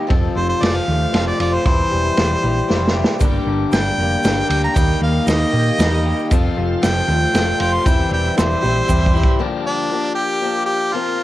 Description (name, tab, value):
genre	folk rock and heartland rock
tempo	116 BPM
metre	3/4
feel	straight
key	G minor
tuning	A4 = 440 Hz
part	clear harmonica	melody	0.0-11.2 s	D4 to C6	-21 LUFS	right 1 dB	cassette tape
part	picked acoustic archtop guitar	accompaniment	0.0-11.2 s	G2 to Bb4	-23 LUFS	left 6 dB	cassette tape
part	electric guitar through a small old amp	riff	0.0-9.4 s	F2 to G4	-23 LUFS	right 1 dB	cassette tape
part	hollow-body short-scale fingered electric bass	bass	0.1-9.2 s	E1 to Bb2	-20 LUFS	equal	none
part	vintage drum kit	drums	0.1-9.4 s	kick drum, ride cymbal, snare drum	-20 LUFS	equal	cassette tape
part	bright tonewheel organ	sustained chords	3.2-11.2 s	Bb3 to G5	-33 LUFS	right 1 dB	none
part	egg shaker	percussion	3.2-9.2 s	none	-37 LUFS	right 10 dB	none
room	studio ambience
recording	home recording on cassette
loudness	-15 LUFS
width	side -15 dB against mid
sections	0.0-9.4 A section; 9.4-11.2 B section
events	harmonica solo 0.0-9.4; drum fill 2.7-3.2, 8.9-9.4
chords	0.1 F; 1.7 C/E; 3.2 Gm; 4.8 Eb; 6.3 F; 7.9 C/E; 9.4 Gm7